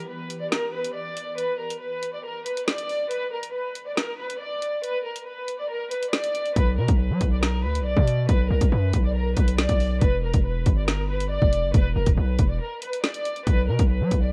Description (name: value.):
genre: hip hop, drill.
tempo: 139 BPM.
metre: 4/4.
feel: half-time.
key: unclear.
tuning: A4 = 442 Hz.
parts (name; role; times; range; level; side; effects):
warm studio violin section; melody; 0.0-14.3 s; A#4 to D5; -31 LUFS; equal; low-pass filter.
drill drum kit; drums; 0.3-14.2 s; hi-hat, kick drum, snare drum; -25 LUFS; equal; vintage 12-bit sampler grit.
distorted 808-style bass; bass; 6.6-14.3 s; D1 to F#3; -26 LUFS; equal; distortion.
room: little or no reverb.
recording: dark, warm production.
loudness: -24 LUFS.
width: mono.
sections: 0.0-14.3 A section.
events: break 0.0-6.6, 12.6-13.5.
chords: 0.0 N.C.; 6.6 Bm; 10.0 Em; 13.5 N.C..